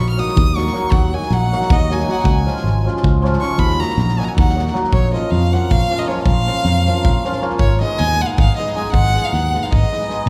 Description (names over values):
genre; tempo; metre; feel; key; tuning
balkan folk, Balkan wedding band; 314 BPM (eighths); 7/8; straight; Eb minor; A4 = 441 Hz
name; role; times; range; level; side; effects
clear violin; melody; 0.0-10.3 s; Db5 to F6; -24 LUFS; equal; none
hammered dulcimer; accompaniment; 0.0-10.3 s; F3 to Ab4; -25 LUFS; equal; none
fingered electric bass; bass; 0.0-10.3 s; Ab1 to F2; -21 LUFS; equal; none
loose indie drum kit; percussion; 0.2-10.3 s; kick drum, snare drum; -22 LUFS; equal; none
room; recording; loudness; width
wet recital hall reverb, RT60 1.5 s; heard from further back in the room; -17 LUFS; mono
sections
0.0-4.9 A section; 4.9-10.3 B section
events
violin solo 0.0-4.9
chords
0.0 Ebm; 2.2 Db; 3.6 Ebm; 4.9 Bbm; 7.6 Abm